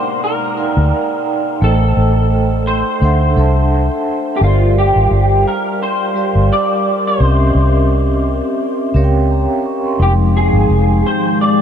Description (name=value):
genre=lo-fi hip hop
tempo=86 BPM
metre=4/4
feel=swing 56% on 16ths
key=unclear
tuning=A4 = 441 Hz
part: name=electric guitar through a small old amp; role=melody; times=0.0-11.6 s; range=F4 to D5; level=-18 LUFS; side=equal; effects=ensemble chorus, low-pass filter, diffuse ambient delay
part: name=vibraphone with medium mallets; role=accompaniment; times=0.0-11.6 s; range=F3 to Db6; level=-17 LUFS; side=right 1 dB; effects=cassette tape, low-pass filter
part: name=vintage muted fingered electric bass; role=bass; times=0.8-11.0 s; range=F1 to D2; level=-13 LUFS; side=equal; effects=none
part: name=deep dark ambient pad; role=sustained chords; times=10.8-11.6 s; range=Eb3 to G5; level=-23 LUFS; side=left 3 dB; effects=chorus, built-in reverb, low-pass filter
room=moderate huge ambient reverb, RT60 8.0 s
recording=dreamy mix soaked in reverb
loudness=-12 LUFS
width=side -8 dB against mid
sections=0.0-11.6 A section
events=none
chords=0.0 Ebmaj9; 1.6 Am7b5; 3.0 D7; 4.4 Gm7; 7.2 C7b9; 10.0 Fm9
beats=0.22 0.92 | 1.61 2.31 3.01 3.71 | 4.40 5.10 5.80 6.50 | 7.20 7.89 8.59 9.29 | 9.99 10.68 11.38